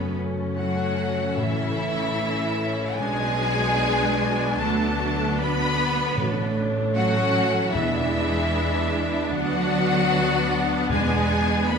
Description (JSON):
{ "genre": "cinematic", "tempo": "76 BPM", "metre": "4/4", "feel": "rubato", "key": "A major", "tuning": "A4 = 440 Hz", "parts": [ { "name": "warm symphonic violin section", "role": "melody", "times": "0.0-11.8 s", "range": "E5 to B5", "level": "-27 LUFS", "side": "left 2 dB", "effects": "none" }, { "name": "warm symphonic violin section", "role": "second line", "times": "0.0-11.8 s", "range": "E4 to B4", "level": "-29 LUFS", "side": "left 1 dB", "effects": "none" }, { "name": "bright symphonic viola section", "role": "accompaniment", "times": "0.0-11.8 s", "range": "F#3 to D4", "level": "-29 LUFS", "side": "right 1 dB", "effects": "none" }, { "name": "mellow French horn section", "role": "sustained chords", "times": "0.0-11.8 s", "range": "G#3 to C#5", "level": "-30 LUFS", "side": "left 1 dB", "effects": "none" }, { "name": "concert harp", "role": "arpeggios", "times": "0.0-11.8 s", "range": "F#2 to B5", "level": "-32 LUFS", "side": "left 6 dB", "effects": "none" }, { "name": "clear symphonic cello section", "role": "bass", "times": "0.0-11.8 s", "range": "E3 to B3", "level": "-28 LUFS", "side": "right 2 dB", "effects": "none" }, { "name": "rich symphonic double bass section", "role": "bass", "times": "0.0-11.8 s", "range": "A1 to F#2", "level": "-29 LUFS", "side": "right 3 dB", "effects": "none" }, { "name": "timpani", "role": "percussion", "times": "1.4-11.8 s", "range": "E2 to A2", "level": "-31 LUFS", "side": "equal", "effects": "none" } ], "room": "wet scoring stage reverb, RT60 1.5 s", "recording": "minimal, uncompressed stereo recording", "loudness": "-21 LUFS", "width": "side -6 dB against mid", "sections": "0.0-11.8 A section", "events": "none", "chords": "0.0 F#m7; 1.4 A; 3.0 Bm; 4.6 D6; 6.2 A; 7.8 E7; 9.3 D6; 10.9 E7" }